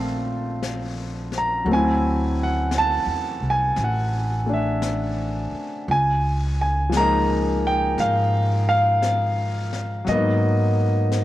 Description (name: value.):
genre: jazz ballad.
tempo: 57 BPM.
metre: 4/4.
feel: swing 67% on 8ths.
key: unclear.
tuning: A4 = 440 Hz.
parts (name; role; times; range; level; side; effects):
clear grand piano; accompaniment; 0.0-11.2 s; F3 to C6; -21 LUFS; equal; none.
upright bass; bass; 0.0-11.2 s; A1 to Ab2; -24 LUFS; equal; none.
jazz brush drum kit; drums; 0.6-11.2 s; brushed snare drum, hi-hat, snare drum; -36 LUFS; left 5 dB; none.
room: moderate spring reverb, RT60 2.6 s.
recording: 1960s-style stereo.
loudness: -19 LUFS.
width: side -14 dB against mid.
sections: 0.0-11.2 A section.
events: none.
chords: 0.0 Gm9; 1.7 D9; 5.9 Db69; 10.1 Abm7.